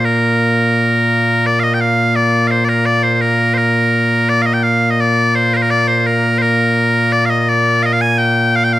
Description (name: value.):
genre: scottish traditional.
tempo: 85 BPM.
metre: 2/4.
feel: straight.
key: Bb major.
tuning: A4 = 440 Hz.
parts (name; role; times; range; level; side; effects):
loud bright bagpipes; solo; 0.0-8.8 s; Bb2 to Ab5; -12 LUFS; equal; none.
room: light reverb.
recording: close, detailed microphones.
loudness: -12 LUFS.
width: side -14 dB against mid.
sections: 0.0-1.5 A section; 1.5-8.8 A section.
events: none.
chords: none.